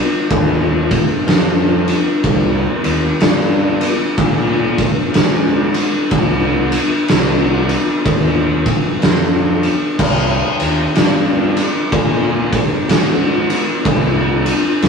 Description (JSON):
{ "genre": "stoner and doom metal", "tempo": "62 BPM", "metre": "4/4", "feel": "swing 62% on 8ths", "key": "C minor", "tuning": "A4 = 443 Hz", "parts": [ { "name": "fuzz picked electric bass", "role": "bass", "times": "0.3-14.9 s", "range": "C2 to Bb2", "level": "-19 LUFS", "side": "right 1 dB", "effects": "overdrive" }, { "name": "oversized low-tuned drum kit", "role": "drums", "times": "0.3-14.9 s", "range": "crash cymbal, kick drum, ride cymbal, snare drum", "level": "-14 LUFS", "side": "equal", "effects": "none" } ], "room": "light reverb", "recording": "rough rehearsal-room recording, tube saturation, studio ambience", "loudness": "-13 LUFS", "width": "side -5 dB against mid", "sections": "0.0-14.9 A section", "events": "none", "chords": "none" }